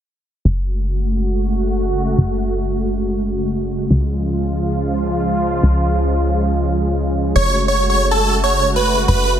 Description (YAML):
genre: trance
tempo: 139 BPM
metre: 4/4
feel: straight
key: F# minor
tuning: A4 = 440 Hz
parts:
  - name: filtered supersaw swell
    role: sustained chords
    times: 0.4-9.4 s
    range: C#3 to F#4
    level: -20 LUFS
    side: right 1 dB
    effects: low-pass filter
  - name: plucky analog bass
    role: bass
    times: 0.5-9.4 s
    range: F#1 to C#2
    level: -19 LUFS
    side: equal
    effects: none
  - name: big supersaw lead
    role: melody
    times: 7.4-9.3 s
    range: A4 to C#5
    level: -16 LUFS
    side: right 2 dB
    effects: tape echo
room: moderate recital hall reverb, RT60 1.7 s, digital ambience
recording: dense, heavily limited modern master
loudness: -15 LUFS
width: side -9 dB against mid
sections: 0.5-9.4 A section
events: filter sweep on supersaw synth 0.5-9.4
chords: 0.5 F#madd9; 3.9 C#; 7.4 F#madd9